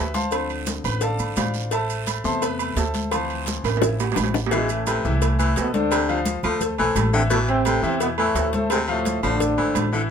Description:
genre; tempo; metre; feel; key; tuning
latin, salsa; 172 BPM; 4/4; straight; unclear; A4 = 444 Hz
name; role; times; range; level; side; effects
bright grand piano; accompaniment; 0.0-10.1 s; C3 to C6; -26 LUFS; left 3 dB; none
upright bass; bass; 0.0-10.1 s; G#1 to E2; -26 LUFS; equal; none
congas; percussion; 0.1-10.1 s; none; -30 LUFS; left 2 dB; none
cowbell and bongos; percussion; 0.1-9.9 s; none; -27 LUFS; left 4 dB; none
guiro; percussion; 0.1-4.5 s; none; -36 LUFS; right 9 dB; none
maracas; percussion; 0.1-10.1 s; none; -36 LUFS; right 9 dB; none
agogo bells and timbales; percussion; 0.3-9.9 s; none; -28 LUFS; right 9 dB; none
warm trombone section; melody; 4.5-9.9 s; G#2 to D4; -24 LUFS; right 1 dB; none
edgy baritone saxophone; second line; 4.5-10.0 s; B2 to F3; -25 LUFS; left 2 dB; none
room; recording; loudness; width
moderate studio reverb, RT60 0.5 s; minimal, uncompressed stereo recording; -20 LUFS; side -7 dB against mid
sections
0.0-4.5 A section; 4.5-10.1 B section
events
grand piano solo 0.0-4.5; drum fill 3.6-4.5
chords
0.3 Dm7; 1.7 Amadd9; 3.1 Dm7; 4.5 Amadd9; 5.9 Dm7; 7.3 Amadd9; 8.7 Dm7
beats
| 0.32 0.67 1.02 1.37 | 1.72 2.07 2.42 2.77 | 3.12 3.47 3.82 4.17 | 4.52 4.87 5.22 5.57 | 5.92 6.26 6.61 6.96 | 7.31 7.66 8.01 8.36 | 8.71 9.06 9.40 9.75 | 10.10

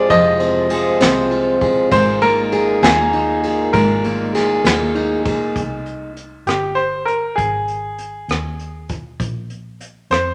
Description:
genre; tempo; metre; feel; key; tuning
six-eight pop ballad; 66 BPM (dotted quarters); 6/8; straight; unclear; A4 = 440 Hz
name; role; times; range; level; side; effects
bright grand piano; melody; 0.0-10.3 s; G4 to Eb5; -20 LUFS; equal; none
fingerpicked steel-string acoustic guitar; accompaniment; 0.0-6.1 s; F3 to Ab4; -20 LUFS; equal; none
mellow woodwind section; sustained chords; 0.0-5.5 s; Bb2 to F4; -26 LUFS; equal; none
vintage muted fingered electric bass; bass; 0.0-10.3 s; F1 to F2; -31 LUFS; equal; none
jazz brush drum kit; drums; 0.1-10.3 s; hi-hat, kick drum, ride cymbal, rim click, snare drum; -25 LUFS; equal; none
room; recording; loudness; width
wet large studio reverb, RT60 1.5 s; none; -17 LUFS; mono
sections
0.0-5.6 A section; 5.6-10.3 B section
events
none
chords
0.0 Fm; 1.9 Absus2; 5.6 C5; 7.4 Ab5; 9.2 Bb5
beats
| 0.10 1.01 | 1.92 2.83 | 3.73 4.64 | 5.56 6.47 | 7.38 8.29 | 9.20 10.11

